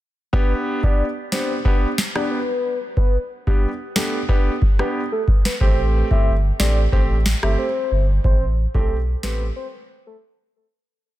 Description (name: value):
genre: dancehall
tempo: 91 BPM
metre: 4/4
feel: straight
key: A minor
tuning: A4 = 440 Hz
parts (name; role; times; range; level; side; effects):
- soft octave-layered synth lead; melody; 0.3-10.2 s; G4 to E5; -26 LUFS; left 1 dB; chorus, digital delay
- clear grand piano; accompaniment; 0.3-9.5 s; A3 to G4; -26 LUFS; right 1 dB; none
- booming analog drum machine; drums; 0.3-9.4 s; kick drum, rim click, snare drum; -19 LUFS; equal; none
- warm sub bass; bass; 5.6-9.5 s; G1 to B1; -20 LUFS; equal; none
room: little or no reverb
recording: dense, heavily limited modern master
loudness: -17 LUFS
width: side -15 dB against mid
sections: 0.3-10.9 verse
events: fade-out 8.2-10.9; break 9.6-10.9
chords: 0.3 G; 5.6 Am7